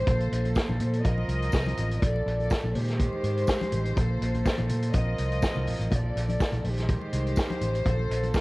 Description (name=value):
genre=disco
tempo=123 BPM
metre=4/4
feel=straight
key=unclear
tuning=A4 = 440 Hz
part: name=warm studio string section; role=sustained chords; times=0.0-8.4 s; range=Eb3 to Eb5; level=-30 LUFS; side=equal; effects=cassette tape
part: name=fingered electric bass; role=bass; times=0.0-8.3 s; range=A1 to Bb2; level=-28 LUFS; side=equal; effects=none
part: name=vintage drum kit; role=drums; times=0.1-8.4 s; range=hi-hat, kick drum, snare drum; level=-29 LUFS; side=equal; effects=cassette tape
part: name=congas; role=percussion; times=0.1-8.4 s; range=none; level=-38 LUFS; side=left 3 dB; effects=none
part: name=tambourine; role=percussion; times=0.6-8.4 s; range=none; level=-47 LUFS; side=right 4 dB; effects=none
room=little or no reverb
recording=home recording on cassette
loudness=-24 LUFS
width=side -22 dB against mid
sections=0.0-8.4 A section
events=none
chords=0.1 Fadd11/Bb; 1.0 F7sus4/Bb; 2.0 Bbmaj7; 2.7 Abmaj7; 4.0 Fadd11/Bb; 4.9 F7sus4/Bb; 5.9 Bbmaj7; 6.6 Abmaj7/Bb; 7.9 Fadd11/Bb